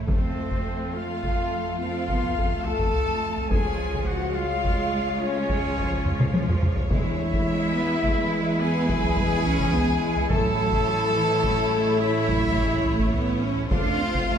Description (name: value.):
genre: cinematic, epic orchestral film score.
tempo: 71 BPM (dotted quarters).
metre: 12/8.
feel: straight.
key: unclear.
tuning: A4 = 440 Hz.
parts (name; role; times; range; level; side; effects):
warm symphonic violin section; melody; 0.0-14.4 s; A4 to C#5; -36 LUFS; left 6 dB; none.
rich symphonic viola section; accompaniment; 0.0-14.4 s; G#3 to F4; -32 LUFS; right 1 dB; none.
rich symphonic cello section; bass; 0.0-14.4 s; E3 to D4; -31 LUFS; right 3 dB; none.
rich symphonic double bass section; bass; 0.0-14.4 s; F1 to F2; -30 LUFS; right 3 dB; none.
bright flute section; second line; 0.1-14.4 s; C5 to A5; -33 LUFS; left 2 dB; none.
clear symphonic violin section; second line; 0.1-14.4 s; C5 to A5; -37 LUFS; left 3 dB; none.
mellow French horn section; sustained chords; 0.1-14.4 s; C4 to A4; -28 LUFS; left 3 dB; none.
warm trumpet; stabs; 0.1-14.4 s; C4 to A4; -32 LUFS; right 2 dB; none.
taiko ensemble; drums; 0.1-14.4 s; none; -26 LUFS; equal; none.
timpani; percussion; 6.9-7.7 s; E2; -33 LUFS; left 1 dB; none.
room: wet recital hall reverb, RT60 1.5 s.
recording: recorded in a church or concert hall.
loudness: -21 LUFS.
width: side -8 dB against mid.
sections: 0.0-14.4 A section.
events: drum fill 6.1-6.9.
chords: 0.1 F; 3.5 C#; 6.9 E; 10.3 A; 13.7 F.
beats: | 0.09 0.95 1.81 2.66 | 3.51 4.36 5.21 6.05 | 6.90 7.75 8.60 9.45 | 10.30 11.15 12.00 12.85 | 13.70.